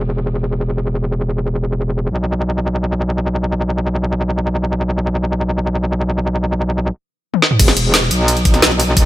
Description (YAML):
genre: dark technical drum and bass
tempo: free time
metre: none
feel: none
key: unclear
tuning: A4 = 438 Hz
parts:
  - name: metallic wobble bass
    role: bass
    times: 0.0-9.1 s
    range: E1 to B1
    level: -16 LUFS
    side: equal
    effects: chorus, sidechain pumping
  - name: drum and bass drum kit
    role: drums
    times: 7.3-9.0 s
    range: crash cymbal, hi-hat, snare drum, toms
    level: -14 LUFS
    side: left 1 dB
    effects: overdrive, low-pass filter on hats, low-pass filter on snare, low-pass filter on toms, low-pass filter on cymbals
  - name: electronic kick drum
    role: drums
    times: 7.6-9.0 s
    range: none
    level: -13 LUFS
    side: equal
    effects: none
  - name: jungle sampler-style drum kit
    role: drums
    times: 7.6-9.0 s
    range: ride cymbal, snare drum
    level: -24 LUFS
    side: right 2 dB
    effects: none
room: little or no reverb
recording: none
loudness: -15 LUFS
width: side -15 dB against mid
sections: 0.0-7.6 A section; 7.6-9.1 B section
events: drum fill 7.3; drop 7.6-9.1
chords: none